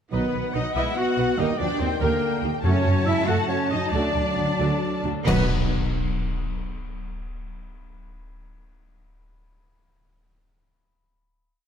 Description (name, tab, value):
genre	cinematic, heroic adventure film score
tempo	132-143 BPM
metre	3/4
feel	straight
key	unclear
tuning	A4 = 440 Hz
part	warm studio violin section	melody	0.1-5.5 s	D#5 to A5	-32 LUFS	left 6 dB	none
part	flute section	second line	0.1-5.5 s	A#4 to F#5	-32 LUFS	equal	none
part	rich symphonic violin section	second line	0.1-5.5 s	A#4 to F#5	-34 LUFS	left 4 dB	none
part	warm oboe	second line	0.1-5.5 s	A#4 to F#5	-34 LUFS	equal	none
part	warm studio viola section	accompaniment	0.1-5.5 s	C#4 to D#5	-33 LUFS	right 1 dB	none
part	dark French horn section	sustained chords	0.1-5.5 s	D3 to B3	-31 LUFS	left 4 dB	none
part	warm trombone section	sustained chords	0.1-5.5 s	D#3 to D#4	-35 LUFS	right 3 dB	none
part	rich symphonic cello section	bass	0.1-5.5 s	A#3 to F#4	-28 LUFS	right 3 dB	none
part	warm symphonic double bass section	bass	0.1-5.5 s	B1 to F#2	-27 LUFS	right 3 dB	none
part	cymbal swell, clash cymbals and concert bass drum	percussion	2.6-6.1 s	none	-30 LUFS	left 1 dB	none
part	timpani	percussion	2.6-3.2, 5.3-5.5 s	F#2 to B2	-28 LUFS	left 1 dB	none
room	moderate concert hall reverb, RT60 2.3 s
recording	dark, warm production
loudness	-21 LUFS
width	side -8 dB against mid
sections	0.1-5.3 theme; 5.3-6.6 final chord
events	slowing down 2.0-5.3; band accent 5.3-5.7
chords	0.1 B; 1.4 D#; 2.6 F#m; 3.9 D; 5.3 B